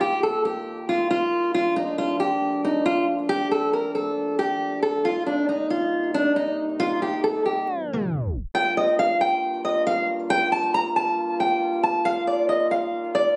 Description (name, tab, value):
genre	hip hop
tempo	137 BPM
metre	4/4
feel	half-time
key	G minor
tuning	A4 = 437 Hz
part	fingerpicked steel-string acoustic guitar	melody	0.0-13.3 s	D4 to Bb5	-24 LUFS	equal	none
part	dark French horn section	sustained chords	0.0-13.4 s	Eb2 to F4	-31 LUFS	equal	none
room	light reverb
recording	recorded on a phone in the room, studio reverb, compression, tape stop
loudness	-23 LUFS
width	mono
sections	0.0-8.6 A section; 8.6-13.4 B section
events	tape stop 7.7-8.6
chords	0.0 Ebsus2; 1.5 Bbmaj7; 5.0 Cm7; 8.6 Gm7; 12.1 Ebsus2